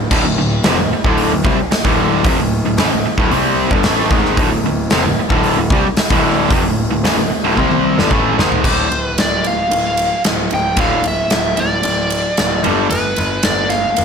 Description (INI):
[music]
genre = hard rock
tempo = 112 BPM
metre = 4/4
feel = straight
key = D minor, D dorian from 8.6 s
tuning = A4 = 440 Hz
[part]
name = overdriven semi-hollow guitar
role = riff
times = 0.0-12.9 s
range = D2 to C4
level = -19 LUFS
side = left 12 dB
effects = none
[part]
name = tight distorted guitar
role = riff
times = 0.0-12.9 s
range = D2 to C4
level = -19 LUFS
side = right 12 dB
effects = distortion
[part]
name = clear grand piano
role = bass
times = 0.0-14.0 s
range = D1 to C2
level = -20 LUFS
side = equal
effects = none
[part]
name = huge arena drum kit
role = drums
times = 0.1-14.0 s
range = crash cymbal, hi-hat, kick drum, ride cymbal, snare drum, toms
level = -17 LUFS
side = equal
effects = none
[part]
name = biting lead guitar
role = melody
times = 8.6-14.0 s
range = B4 to G5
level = -18 LUFS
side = equal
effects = overdrive, slapback echo
[sound]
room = light reverb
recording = none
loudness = -13 LUFS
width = side -6 dB against mid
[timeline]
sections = 0.0-8.6 A section; 8.6-14.0 B section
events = drum fill 7.6-8.6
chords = 0.0 Dm; 12.6 G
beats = | 0.11 0.65 1.18 1.71 | 2.25 2.78 3.31 3.85 | 4.38 4.91 5.45 5.98 | 6.51 7.04 7.58 8.11 | 8.64 9.18 9.71 10.24 | 10.78 11.31 11.84 12.38 | 12.91 13.44 13.97